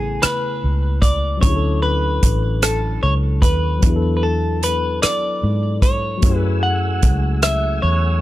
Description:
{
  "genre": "slow six-eight R&B",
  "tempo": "50 BPM (dotted quarters)",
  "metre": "6/8",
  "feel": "straight",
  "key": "unclear",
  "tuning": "A4 = 439 Hz",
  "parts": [
    { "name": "clean electric guitar", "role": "melody", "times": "0.0-8.2 s", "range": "G#4 to F#5", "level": "-22 LUFS", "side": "equal", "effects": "none" },
    { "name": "tine electric piano", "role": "accompaniment", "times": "0.0-8.2 s", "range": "C#3 to G#5", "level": "-26 LUFS", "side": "left 5 dB", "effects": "overdrive" },
    { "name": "vintage muted fingered electric bass", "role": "bass", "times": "0.0-8.2 s", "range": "A1 to G#2", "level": "-19 LUFS", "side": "equal", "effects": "none" },
    { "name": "warm soul drum kit", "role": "drums", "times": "0.2-7.6 s", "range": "hi-hat, kick drum, rim click", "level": "-16 LUFS", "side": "equal", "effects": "none" },
    { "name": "tonewheel organ", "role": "sustained chords", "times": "6.2-8.2 s", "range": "A3 to E6", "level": "-29 LUFS", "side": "right 1 dB", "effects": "chorus vibrato, slow rotary speaker" }
  ],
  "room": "small room reverb",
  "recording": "none",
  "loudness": "-16 LUFS",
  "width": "side -15 dB against mid",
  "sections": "0.0-8.2 A section",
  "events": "none",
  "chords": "0.0 Amaj9; 1.4 Dmaj9; 3.8 E9sus4; 6.2 F#m9",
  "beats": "0.22 | 1.42 2.62 | 3.82 5.02 | 6.22 7.42"
}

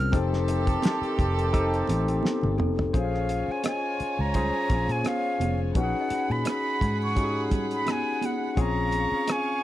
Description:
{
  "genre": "lush 1970s-style soul",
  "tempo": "85 BPM",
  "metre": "4/4",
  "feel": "swing 54% on 16ths",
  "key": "unclear",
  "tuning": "A4 = 443 Hz",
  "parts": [
    { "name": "breathy concert flute", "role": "melody", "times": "0.0-9.6 s", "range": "F5 to F6", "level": "-29 LUFS", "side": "equal", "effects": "none" },
    { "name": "barky tine electric piano", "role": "accompaniment", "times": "0.0-9.6 s", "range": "C4 to C5", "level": "-29 LUFS", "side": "moving between left 7 dB and left 1 dB", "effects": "overdrive, auto-pan" },
    { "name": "vintage muted fingered electric bass", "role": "bass", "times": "0.0-9.1 s", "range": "F1 to Bb2", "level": "-28 LUFS", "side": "equal", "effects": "none" },
    { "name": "dark studio violin section", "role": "second line", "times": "0.1-9.6 s", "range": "F4 to Db6", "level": "-35 LUFS", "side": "right 2 dB", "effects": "none" },
    { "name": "clear horn section", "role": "stabs", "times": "0.1-2.5 s", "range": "Eb3 to G4", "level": "-32 LUFS", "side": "right 4 dB", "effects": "none" },
    { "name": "cloth-damped thuddy drum kit", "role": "drums", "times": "0.1-9.5 s", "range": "hi-hat, kick drum, rim click, snare drum, toms", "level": "-27 LUFS", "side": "equal", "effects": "none" },
    { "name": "congas", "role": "percussion", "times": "0.1-9.5 s", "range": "none", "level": "-34 LUFS", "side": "right 6 dB", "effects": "none" },
    { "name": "worn celesta", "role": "texture", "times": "2.6-7.8 s", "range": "A4 to Eb5", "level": "-40 LUFS", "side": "right 1 dB", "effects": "none" }
  ],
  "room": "little or no reverb",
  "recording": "dry, close 1970s-style studio recording",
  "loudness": "-23 LUFS",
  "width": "side -14 dB against mid",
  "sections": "0.0-2.9 A section; 2.9-9.6 B section",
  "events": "drum fill 2.2-2.9",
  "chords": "0.1 F9; 2.9 Bbm9; 5.8 B69/Bb; 8.6 Bbm9",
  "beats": "| 0.13 0.83 1.53 2.24 | 2.94 3.64 4.35 5.05 | 5.76 6.46 7.17 7.87 | 8.57 9.28"
}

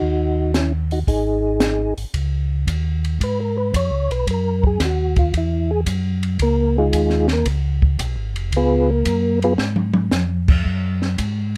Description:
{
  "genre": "soul jazz organ trio",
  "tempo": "113 BPM",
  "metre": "4/4",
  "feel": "swing 69% on 8ths",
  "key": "Db mixolydian",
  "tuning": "A4 = 441 Hz",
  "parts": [
    { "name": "percussive tonewheel organ", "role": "melody", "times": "0.0-9.5 s", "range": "Ab3 to Db5", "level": "-22 LUFS", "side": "equal", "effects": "slow rotary speaker, chorus vibrato" },
    { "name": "mellow tonewheel organ", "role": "bass", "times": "0.0-11.6 s", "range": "F1 to Ab2", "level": "-23 LUFS", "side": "equal", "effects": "chorus vibrato, slow rotary speaker" },
    { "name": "compact cocktail drum kit", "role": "drums", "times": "0.5-11.4 s", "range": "crash cymbal, hi-hat, kick drum, ride cymbal, snare drum, toms", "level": "-23 LUFS", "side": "equal", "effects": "none" }
  ],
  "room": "little or no reverb",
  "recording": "close, detailed microphones",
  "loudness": "-20 LUFS",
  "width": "mono",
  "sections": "0.0-2.1 A section; 2.1-11.6 B section",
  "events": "tonewheel organ solo 2.1-11.6; drum fill 9.6-10.1",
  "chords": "0.0 Ebm; 1.1 Ab5; 2.1 Db9; 4.3 Ebm; 6.4 Db9; 10.7 Gbsus2",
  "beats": "| 0.01 0.55 1.08 1.61 | 2.14 2.67 3.21 3.74 | 4.27 4.80 5.33 5.87 | 6.40 6.93 7.46 7.99 | 8.53 9.06 9.59 10.12 | 10.65 11.19"
}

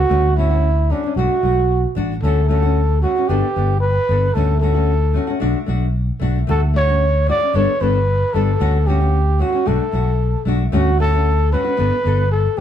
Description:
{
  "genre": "highlife guitar band",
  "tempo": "113 BPM",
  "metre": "4/4",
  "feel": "straight",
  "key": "D major",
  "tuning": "A4 = 440 Hz",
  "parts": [
    { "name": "breathy trumpet", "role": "melody", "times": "0.0-12.6 s", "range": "D4 to D5", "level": "-19 LUFS", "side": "right 1 dB", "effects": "none" },
    { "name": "fingered electric bass", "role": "bass", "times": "0.0-12.6 s", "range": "G1 to D2", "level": "-17 LUFS", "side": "equal", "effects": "none" },
    { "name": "nylon-string guitar", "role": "accompaniment", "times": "0.1-12.6 s", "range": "G3 to A4", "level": "-23 LUFS", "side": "left 4 dB", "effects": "none" }
  ],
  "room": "moderate stone room reverb, RT60 1.0 s",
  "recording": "band playing live in one room",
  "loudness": "-15 LUFS",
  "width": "side -10 dB against mid",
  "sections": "0.0-12.6 A section",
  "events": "none",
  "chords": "0.1 Dmaj7; 1.2 Bm7; 2.2 Dmaj7; 3.3 Gadd9; 4.4 Dmaj7; 5.4 Bm7; 6.5 Dmaj7; 7.5 Gadd9; 8.6 Dmaj7; 9.7 Bm7; 10.7 Dmaj7; 11.8 Gadd9",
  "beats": "| 0.10 0.64 1.17 1.70 | 2.23 2.76 3.29 3.83 | 4.36 4.89 5.42 5.95 | 6.48 7.01 7.54 8.08 | 8.61 9.14 9.67 10.20 | 10.73 11.26 11.79 12.32"
}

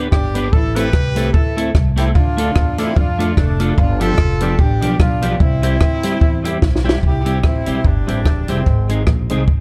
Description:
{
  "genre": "ska",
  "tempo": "148 BPM",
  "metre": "4/4",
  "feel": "swing 56% on 8ths",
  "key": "C major",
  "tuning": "A4 = 441 Hz",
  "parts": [
    { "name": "clean electric guitar", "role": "accompaniment", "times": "0.0-9.4 s", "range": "F3 to B4", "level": "-26 LUFS", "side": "equal", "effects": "spring reverb" },
    { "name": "overdriven tonewheel organ", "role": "stabs", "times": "0.0-9.4 s", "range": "G3 to B4", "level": "-29 LUFS", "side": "equal", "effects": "chorus vibrato, slow rotary speaker" },
    { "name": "upright bass", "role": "bass", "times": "0.0-9.6 s", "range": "E1 to F2", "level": "-22 LUFS", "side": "equal", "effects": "none" },
    { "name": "warm horn section", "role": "melody", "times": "0.1-8.9 s", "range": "G3 to B4", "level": "-25 LUFS", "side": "equal", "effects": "none" },
    { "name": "compact cocktail drum kit", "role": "drums", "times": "0.1-9.6 s", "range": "hi-hat, kick drum, rim click, snare drum", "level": "-19 LUFS", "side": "equal", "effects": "none" }
  ],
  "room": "small room ambience",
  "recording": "dark, warm production",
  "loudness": "-16 LUFS",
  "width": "mono",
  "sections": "0.0-7.0 A section; 7.0-9.6 B section",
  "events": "drum fill 6.6-7.0",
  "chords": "0.0 G; 0.5 Am; 2.2 Dm; 3.8 G7; 5.4 C; 8.7 Ab",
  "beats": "0.12 | 0.53 0.93 1.34 1.75 | 2.15 2.56 2.97 3.37 | 3.78 4.19 4.59 5.00 | 5.41 5.81 6.22 6.63 | 7.03 7.44 7.85 8.26 | 8.66 9.07 9.48"
}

